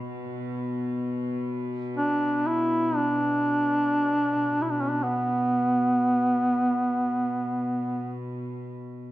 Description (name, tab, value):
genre	caucasian folk, Caucasian lament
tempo	free time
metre	none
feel	none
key	B minor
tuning	A4 = 440 Hz
part	warm chamber cello section	drone	0.0-9.1 s	B2	-32 LUFS	left 1 dB	none
part	mellow duduk	melody	2.0-8.1 s	B3 to E4	-23 LUFS	equal	none
room	wet recital hall reverb, RT60 1.8 s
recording	dark, warm production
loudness	-23 LUFS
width	side -15 dB against mid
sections	0.0-9.1 A section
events	none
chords	none